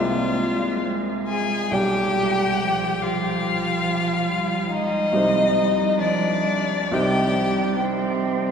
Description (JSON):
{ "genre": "classical, slow romantic movement for piano quartet", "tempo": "62-72 BPM", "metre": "4/4", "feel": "rubato", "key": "C minor", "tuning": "A4 = 435 Hz", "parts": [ { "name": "rich violin", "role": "melody", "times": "0.0-7.8 s", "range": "D5 to Ab5", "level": "-24 LUFS", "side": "left 3 dB", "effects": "none" }, { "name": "rich cello", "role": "second line", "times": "0.0-8.5 s", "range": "F3 to C4", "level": "-26 LUFS", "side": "right 5 dB", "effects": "none" }, { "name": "rich violin", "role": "second line", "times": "0.0-7.8 s", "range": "D4 to Ab4", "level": "-27 LUFS", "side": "left 2 dB", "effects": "none" }, { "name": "warm baby grand piano", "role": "accompaniment", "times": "0.0-8.5 s", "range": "B1 to D5", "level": "-26 LUFS", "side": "equal", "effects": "none" } ], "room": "wet cathedral reverb, RT60 7.2 s", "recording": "none", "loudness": "-19 LUFS", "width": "side -7 dB against mid", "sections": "0.0-8.5 A section", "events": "none", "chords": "0.0 Dm7b5/C; 1.7 G7/B; 5.1 Cm" }